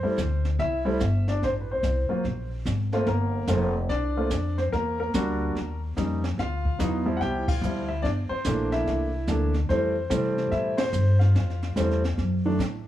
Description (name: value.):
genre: jazz piano trio.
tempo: 145 BPM.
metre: 4/4.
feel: swing 65% on 8ths.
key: F major.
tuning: A4 = 440 Hz.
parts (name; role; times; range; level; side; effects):
warm concert grand piano; melody; 0.0-12.6 s; Eb3 to G5; -26 LUFS; equal; plate reverb.
upright bass; bass; 0.0-12.9 s; F1 to C3; -26 LUFS; equal; none.
jazz brush drum kit; drums; 0.2-12.9 s; brushed snare drum, hi-hat, kick drum, ride cymbal, snare drum; -33 LUFS; right 2 dB; none.
room: light reverb.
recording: none.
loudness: -23 LUFS.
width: side -12 dB against mid.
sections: 0.0-12.9 A section.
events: band accent 7.4, 10.7.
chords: 0.0 Fmaj7sus2 (rootless); 1.4 Am; 2.2 Abadd9; 3.1 Gm11; 4.7 Em7b5; 5.6 Eb9; 6.4 Dm11; 8.0 C13; 9.7 Fmaj9; 12.2 D (rootless).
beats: 0.18 0.59 1.00 | 1.42 1.83 2.25 2.66 | 3.07 3.49 3.90 4.31 | 4.73 5.14 5.55 5.97 | 6.38 6.80 7.21 7.62 | 8.04 8.45 8.87 9.28 | 9.69 10.11 10.52 10.93 | 11.35 11.76 12.18 12.59.